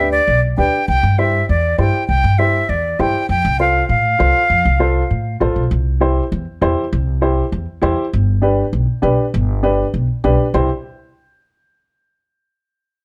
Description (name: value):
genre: latin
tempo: 199 BPM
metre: 4/4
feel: straight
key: C major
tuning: A4 = 441 Hz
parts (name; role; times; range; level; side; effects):
- breathy silver concert flute; melody; 0.0-5.4 s; D5 to G5; -19 LUFS; equal; slapback echo, plate reverb
- warm upright piano; accompaniment; 0.0-10.7 s; D4 to C5; -21 LUFS; equal; none
- upright bass; bass; 0.0-10.7 s; G1 to A2; -20 LUFS; equal; none
room: light reverb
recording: dark, warm production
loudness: -16 LUFS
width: mono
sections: 0.0-5.7 A section; 5.7-10.5 B section; 10.5-11.8 C section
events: none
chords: 0.0 G; 0.9 C; 3.3 F; 5.7 C; 8.1 G; 10.5 C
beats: 0.28 0.58 | 0.88 1.18 1.48 1.78 | 2.09 2.39 2.69 2.99 | 3.29 3.60 3.90 4.20 | 4.50 4.80 5.11 5.41 | 5.71 6.01 6.31 6.62 | 6.92 7.22 7.52 7.82 | 8.13 8.43 8.73 9.03 | 9.34 9.64 9.94 10.24 | 10.54